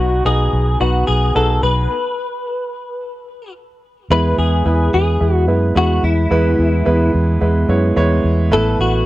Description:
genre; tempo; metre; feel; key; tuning
piano-driven pop; 109 BPM; 4/4; straight; E major; A4 = 438 Hz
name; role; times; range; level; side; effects
direct-recorded clean electric guitar; melody; 0.0-9.1 s; E4 to B4; -19 LUFS; left 2 dB; ensemble chorus
warm grand piano; accompaniment; 0.0-9.1 s; A2 to D#5; -18 LUFS; right 2 dB; none
vintage muted fingered electric bass; bass; 0.0-9.0 s; A1 to F#2; -16 LUFS; equal; none
room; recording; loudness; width
little or no reverb; dry, close 1970s-style studio recording; -13 LUFS; side -16 dB against mid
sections
0.0-4.1 A section; 4.1-9.1 B section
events
stop 1.9-4.1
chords
0.0 B; 4.1 E; 8.5 Asus2

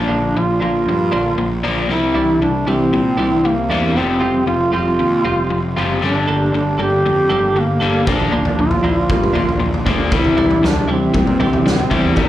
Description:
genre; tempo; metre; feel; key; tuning
quiet-loud alternative rock; 117 BPM; 4/4; straight; unclear; A4 = 438 Hz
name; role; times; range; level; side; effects
warm duduk; melody; 0.0-12.3 s; Bb3 to G4; -18 LUFS; right 1 dB; slapback echo, tape echo
overdriven electric guitar; riff; 0.0-12.3 s; F2 to C4; -21 LUFS; left 5 dB; spring reverb, slapback echo
fuzz picked electric bass; bass; 0.0-12.3 s; F1 to Bb2; -21 LUFS; equal; overdrive
twelve-string electric guitar; arpeggios; 0.1-12.2 s; D3 to A4; -21 LUFS; right 2 dB; harmonic tremolo, slapback echo, tape echo
loose indie drum kit; drums; 8.1-12.3 s; kick drum, snare drum, toms; -19 LUFS; equal; none
room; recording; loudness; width
light reverb; live gig heard through the venue's PA, club reverb; -14 LUFS; side -13 dB against mid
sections
0.0-12.3 A section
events
none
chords
0.0 Bb; 1.9 Cadd9; 4.0 Fsus2; 6.0 Gmadd9; 8.1 Bb; 10.1 Cadd9

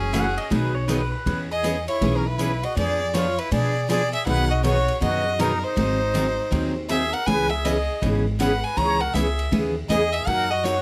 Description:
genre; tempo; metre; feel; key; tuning
country, western swing; 160 BPM; 4/4; swing 63% on 8ths; B major; A4 = 441 Hz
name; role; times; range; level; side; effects
clear fiddle; melody; 0.0-10.8 s; G#4 to A#5; -27 LUFS; equal; none
trumpet with plunger mute; second line; 0.0-10.8 s; C#4 to C#5; -32 LUFS; equal; none
upright bass; bass; 0.0-10.8 s; F#1 to Cb3; -28 LUFS; equal; none
pedal steel guitar; second line; 0.1-1.4 s; B4 to F#5; -32 LUFS; equal; none
picked steel-string acoustic guitar; accompaniment; 0.1-10.8 s; B2 to G#4; -28 LUFS; equal; none
swinging big-band drum kit; drums; 0.1-10.8 s; hi-hat, kick drum, ride cymbal; -36 LUFS; equal; none
room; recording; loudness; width
light reverb; none; -23 LUFS; mono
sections
0.0-10.8 A section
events
none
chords
0.0 F#m7; 0.5 B6; 1.3 E6; 2.8 Fdim7; 4.3 B6; 5.8 G#7; 7.3 C#m7; 10.3 F#6

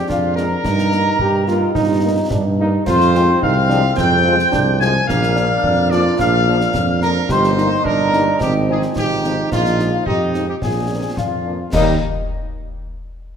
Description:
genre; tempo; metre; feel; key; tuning
military-style march for wind band; 108 BPM; 2/4; straight; Eb major; A4 = 441 Hz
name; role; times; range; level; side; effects
mellow trumpet section; melody; 0.0-12.0 s; Eb4 to Ab5; -22 LUFS; equal; none
mellow hollow small flute group; second line; 0.0-12.0 s; Eb5 to Ab6; -22 LUFS; left 3 dB; none
dark trombone section; sustained chords; 0.0-12.0 s; F3 to Eb4; -25 LUFS; right 2 dB; none
warm euphonium; second line; 0.1-11.5 s; Bb3 to G4; -22 LUFS; right 3 dB; none
dark tuba; bass; 0.1-12.0 s; G1 to G2; -19 LUFS; right 1 dB; none
concert snare drum, concert bass drum and clash cymbals; drums; 0.1-12.0 s; none; -26 LUFS; left 1 dB; none
mellow French horn section; accompaniment; 0.4-12.0 s; F3 to Eb4; -26 LUFS; left 6 dB; none
room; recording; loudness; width
wet scoring stage reverb, RT60 1.8 s; none; -14 LUFS; side -7 dB against mid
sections
0.0-11.7 A section; 11.7-12.8 B section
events
none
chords
0.0 Ddim/F; 0.6 Eb/G; 2.9 Fm; 5.1 Bb; 7.3 Eb/G; 8.4 Fm7/Ab; 9.5 Bb7sus4; 10.6 Bb7; 11.7 Eb

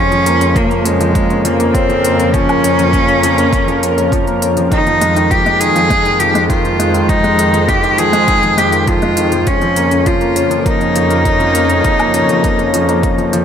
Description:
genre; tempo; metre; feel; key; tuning
piano and strings electronica; 101 BPM; 4/4; straight; unclear; A4 = 440 Hz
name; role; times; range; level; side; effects
rich cello; melody; 0.0-13.4 s; Ab3 to Ab4; -14 LUFS; right 1 dB; none
lush unison pad; sustained chords; 0.0-13.4 s; Db3 to Db5; -20 LUFS; equal; chorus, sidechain pumping
warm upright piano; riff; 0.0-13.4 s; Eb3 to Db4; -16 LUFS; left 2 dB; digital delay
dark studio double bass section; bass; 0.0-13.4 s; F2; -19 LUFS; equal; sidechain pumping
electronic hi-hat and woodblock; drums; 0.1-13.4 s; none; -23 LUFS; equal; studio reverb
electronic kick drum; drums; 0.6-13.2 s; none; -18 LUFS; equal; studio reverb
room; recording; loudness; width
light reverb, small room ambience; none; -10 LUFS; side -8 dB against mid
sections
0.0-13.4 A section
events
none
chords
0.0 Bbm/F; 4.7 Fm7; 9.5 Bbm/F

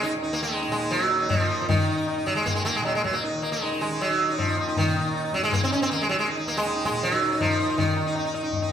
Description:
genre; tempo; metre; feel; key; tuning
indian classical, Hindustani; 157 BPM; 4/4; straight; Eb raga bhimpalasi; A4 = 440 Hz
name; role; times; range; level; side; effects
sitar; melody; 0.0-8.7 s; Eb3 to Eb4; -23 LUFS; right 1 dB; none
tanpura; drone; 0.0-8.7 s; Eb2 to Eb3; -34 LUFS; right 1 dB; none
tabla; percussion; 0.1-8.7 s; none; -29 LUFS; left 2 dB; none
room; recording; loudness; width
wet recital hall reverb, RT60 1.3 s; recorded in a church or concert hall; -22 LUFS; side -9 dB against mid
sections
0.0-8.7 A section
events
speeding up 0.0-8.7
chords
none

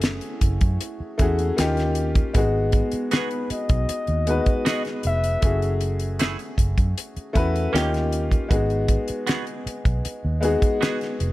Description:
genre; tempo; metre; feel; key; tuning
lush 1970s-style soul; 78 BPM; 4/4; straight; unclear; A4 = 440 Hz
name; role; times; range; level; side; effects
warm baby grand piano; accompaniment; 0.0-11.3 s; G#3 to B4; -26 LUFS; left 2 dB; none
vintage muted fingered electric bass; bass; 0.0-11.3 s; E#1 to F#2; -24 LUFS; equal; none
damped 70s drum kit; drums; 0.0-11.3 s; hi-hat, kick drum, snare drum; -23 LUFS; equal; none
vibraphone with soft mallets; texture; 0.0-11.3 s; B3 to B4; -36 LUFS; right 4 dB; none
breathy flugelhorn; melody; 3.1-5.8 s; B4 to E5; -28 LUFS; left 3 dB; none
semi-hollow electric guitar; riff; 3.1-11.0 s; A3 to G#4; -29 LUFS; right 8 dB; none
room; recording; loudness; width
little or no reverb; none; -20 LUFS; side -17 dB against mid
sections
0.0-11.3 A section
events
none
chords
0.0 F#m9; 1.6 D#7; 2.3 G#m7; 5.4 F#m9; 7.7 D#7; 8.5 G#m7

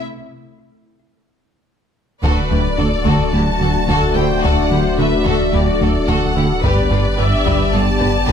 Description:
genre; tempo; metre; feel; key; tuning
cinematic, hybrid orchestral and electronic film score; 109 BPM; 4/4; straight; unclear; A4 = 441 Hz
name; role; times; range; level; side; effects
clear symphonic violin section; melody; 0.0-8.3 s; D5 to A5; -23 LUFS; left 4 dB; none
brassy analog pad; sustained chords; 0.0-8.3 s; A3 to D5; -23 LUFS; left 1 dB; chorus
clear symphonic violin section; second line; 2.2-8.3 s; E4 to B4; -24 LUFS; left 1 dB; none
rich symphonic viola section; accompaniment; 2.2-8.3 s; F#4 to E5; -25 LUFS; right 2 dB; none
mellow French horn section; sustained chords; 2.2-8.3 s; A3 to G4; -25 LUFS; left 8 dB; none
thumb-piano-like synth pluck; arpeggios; 2.2-8.3 s; D3 to G4; -26 LUFS; left 3 dB; chorus, digital delay
fat analog bass; riff; 2.2-8.3 s; D2 to D3; -21 LUFS; right 2 dB; none
rich studio cello section; bass; 2.2-8.3 s; D2 to G2; -24 LUFS; right 2 dB; none
rich symphonic double bass section; bass; 2.2-8.3 s; G1 to D2; -24 LUFS; right 3 dB; none
warm sub bass; bass; 2.2-8.3 s; D1 to G1; -23 LUFS; equal; none
taiko ensemble; drums; 2.2-8.3 s; none; -24 LUFS; left 1 dB; none
room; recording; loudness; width
light reverb; close, detailed microphones; -14 LUFS; side -8 dB against mid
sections
0.0-2.2 A section; 2.2-8.3 A section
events
break 0.0-2.2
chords
0.0 N.C.; 2.2 D; 6.6 G

